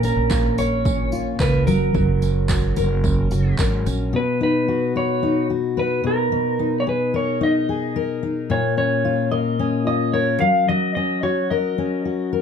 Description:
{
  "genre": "acoustic pop",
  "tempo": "110 BPM",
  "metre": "4/4",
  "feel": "straight",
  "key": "F# major",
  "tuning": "A4 = 440 Hz",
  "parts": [
    { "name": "clean lap steel guitar", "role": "melody", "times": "0.0-12.3 s", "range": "A#4 to E#5", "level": "-23 LUFS", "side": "right 2 dB", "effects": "none" },
    { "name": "fingerpicked steel-string acoustic guitar", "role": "accompaniment", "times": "0.0-12.4 s", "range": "A#2 to B4", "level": "-21 LUFS", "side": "left 5 dB", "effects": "none" },
    { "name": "upright bass", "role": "bass", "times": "0.0-4.1 s", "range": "F#1 to C#2", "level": "-21 LUFS", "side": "right 2 dB", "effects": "none" },
    { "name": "80s electronic pad drums", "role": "drums", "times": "0.0-4.0 s", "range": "handclaps, kick drum, tambourine", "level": "-24 LUFS", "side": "right 1 dB", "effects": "none" },
    { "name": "tambourine", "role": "percussion", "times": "0.0-4.0 s", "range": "none", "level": "-37 LUFS", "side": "right 8 dB", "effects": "none" }
  ],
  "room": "moderate studio ambience, RT60 0.5 s",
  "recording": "dark, warm production",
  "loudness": "-18 LUFS",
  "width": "side -7 dB against mid",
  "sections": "0.0-4.1 A section; 4.1-12.4 A section",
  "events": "none",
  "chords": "0.0 A#m; 1.7 F#; 4.1 B; 6.0 G#madd9/B; 8.5 A#m; 10.4 F#6",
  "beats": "0.31 0.86 1.40 | 1.95 2.50 3.04 3.59 | 4.13 4.68 5.23 5.77 | 6.32 6.86 7.41 7.95 | 8.50 9.04 9.59 10.14 | 10.69 11.23 11.78 12.33"
}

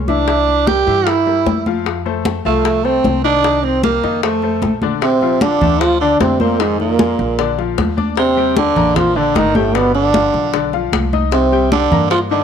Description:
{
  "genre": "Afro-Cuban jazz",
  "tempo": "152 BPM",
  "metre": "4/4",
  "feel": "straight",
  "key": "F major, Bb major from 5.0 s",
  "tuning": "A4 = 440 Hz",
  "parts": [
    { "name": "upright bass", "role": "bass", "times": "0.0-12.4 s", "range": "G1 to G2", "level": "-22 LUFS", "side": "right 1 dB", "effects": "none" },
    { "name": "mellow trombone", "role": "melody", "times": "0.1-12.4 s", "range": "Ab3 to G4", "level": "-16 LUFS", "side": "equal", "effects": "none" },
    { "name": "growling tenor saxophone", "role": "second line", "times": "0.1-12.4 s", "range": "Ab2 to G4", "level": "-20 LUFS", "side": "right 12 dB", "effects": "none" },
    { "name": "clear baby grand piano", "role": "accompaniment", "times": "0.1-12.4 s", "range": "D3 to Eb6", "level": "-22 LUFS", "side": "left 12 dB", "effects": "none" },
    { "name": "bongos", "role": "percussion", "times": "0.1-12.3 s", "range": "none", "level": "-23 LUFS", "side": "left 13 dB", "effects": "none" },
    { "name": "congas", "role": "percussion", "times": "0.1-12.4 s", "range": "none", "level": "-19 LUFS", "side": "equal", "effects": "none" }
  ],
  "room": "light reverb, studio ambience",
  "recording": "1960s-style stereo with parts hard left and right",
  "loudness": "-13 LUFS",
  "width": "side -8 dB against mid",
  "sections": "0.0-5.0 A section; 5.0-12.4 B section",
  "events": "none",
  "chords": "0.3 C9; 1.9 F; 3.4 Cm7; 4.2 Bbmaj9; 6.6 Fm7; 7.4 Bb; 8.2 Ebmaj7; 9.8 G7; 11.3 Cm7",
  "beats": "| 0.28 0.67 1.07 1.46 | 1.86 2.25 2.65 3.04 | 3.44 3.83 4.23 4.62 | 5.02 5.42 5.81 6.20 | 6.60 6.99 7.39 7.78 | 8.18 8.57 8.96 9.36 | 9.75 10.14 10.54 10.93 | 11.32 11.72 12.11"
}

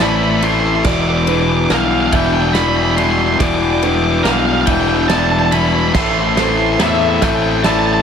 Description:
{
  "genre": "post-rock",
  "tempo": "47 BPM (dotted quarters)",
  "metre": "6/8",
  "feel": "straight",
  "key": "unclear",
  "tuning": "A4 = 442 Hz",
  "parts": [
    { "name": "octave-fuzz lead guitar", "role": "melody", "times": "0.0-8.0 s", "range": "E5 to D6", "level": "-18 LUFS", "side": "right 3 dB", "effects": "distortion, tape echo" },
    { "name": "bright woodwind section", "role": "sustained chords", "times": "0.0-8.0 s", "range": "E3 to A5", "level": "-27 LUFS", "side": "right 5 dB", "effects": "none" },
    { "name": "clean electric guitar", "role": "arpeggios", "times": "0.0-8.0 s", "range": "A2 to E4", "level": "-24 LUFS", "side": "equal", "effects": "analog chorus, tape echo" },
    { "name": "felt-muted upright piano", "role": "arpeggios", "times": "0.0-8.0 s", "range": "B4 to E5", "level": "-25 LUFS", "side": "right 10 dB", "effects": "tape echo" },
    { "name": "cranked stack guitar", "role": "riff", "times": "0.0-8.0 s", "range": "E2 to A3", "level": "-17 LUFS", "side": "left 7 dB", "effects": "overdrive" },
    { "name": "modern bright fingered electric bass", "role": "bass", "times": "0.0-8.0 s", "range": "E1 to E2", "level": "-21 LUFS", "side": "right 1 dB", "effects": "none" },
    { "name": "loose indie drum kit", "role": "drums", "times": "0.0-7.8 s", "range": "crash cymbal, kick drum, ride cymbal, snare drum", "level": "-21 LUFS", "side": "right 1 dB", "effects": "none" }
  ],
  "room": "light reverb, small room ambience",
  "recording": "none",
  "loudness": "-12 LUFS",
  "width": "side -7 dB against mid",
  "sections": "0.0-8.0 A section",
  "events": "build-up 0.0-8.0; drum fill 0.0-8.0",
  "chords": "0.0 Am; 0.9 Em7; 6.0 Am",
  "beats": "| 0.85 2.13 | 3.40 4.68 | 5.95 7.22"
}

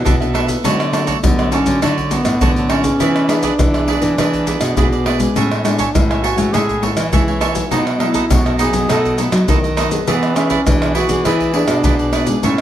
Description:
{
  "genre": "samba and choro",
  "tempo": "102 BPM",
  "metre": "4/4",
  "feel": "straight",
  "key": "unclear",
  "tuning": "A4 = 440 Hz",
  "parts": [
    { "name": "dark duduk", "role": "melody", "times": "0.0-12.6 s", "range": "G#3 to A4", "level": "-19 LUFS", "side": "equal", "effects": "none" },
    { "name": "cavaquinho", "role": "accompaniment", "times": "0.0-12.6 s", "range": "D4 to G#5", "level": "-22 LUFS", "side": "right 7 dB", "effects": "none" },
    { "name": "nylon-string guitar", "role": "accompaniment", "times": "0.0-12.6 s", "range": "F#2 to A4", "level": "-23 LUFS", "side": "left 4 dB", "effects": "none" },
    { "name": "nylon-string guitar", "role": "bass", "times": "0.0-12.6 s", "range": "A2 to F#3", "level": "-20 LUFS", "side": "right 1 dB", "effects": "none" },
    { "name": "maracas, surdo, pandeiro and tamborim", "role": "percussion", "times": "0.1-12.6 s", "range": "none", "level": "-18 LUFS", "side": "equal", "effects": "none" }
  ],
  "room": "light reverb",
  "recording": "lossy compression artefacts",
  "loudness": "-13 LUFS",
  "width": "side -11 dB against mid",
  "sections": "0.0-12.6 A section",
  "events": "none",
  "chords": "0.0 E7sus4; 0.6 Dmaj7; 3.0 E7; 5.4 Amaj7; 7.7 B7; 10.1 E7",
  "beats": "0.06 | 0.65 1.24 1.82 2.41 | 3.00 3.59 4.18 4.77 | 5.36 5.95 6.54 7.13 | 7.72 8.31 8.90 9.48 | 10.07 10.66 11.25 11.84 | 12.43"
}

